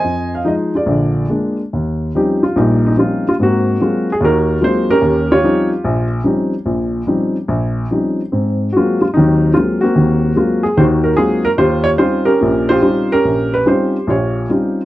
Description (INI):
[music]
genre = solo jazz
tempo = 145 BPM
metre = 4/4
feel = swing 67% on 8ths, rubato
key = Eb mixolydian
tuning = A4 = 440 Hz
[part]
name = warm upright piano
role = solo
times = 0.0-14.8 s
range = Bb1 to Ab5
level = -12 LUFS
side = equal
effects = none
[sound]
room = light reverb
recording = dry, close 1970s-style studio recording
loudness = -12 LUFS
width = side -16 dB against mid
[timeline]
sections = 0.0-1.7 A section; 1.7-14.8 A section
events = none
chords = 0.0 Fm7; 0.9 Bb7; 1.7 Eb13; 3.4 Ab13; 5.0 Eb13; 8.3 Ab13; 11.6 Eb13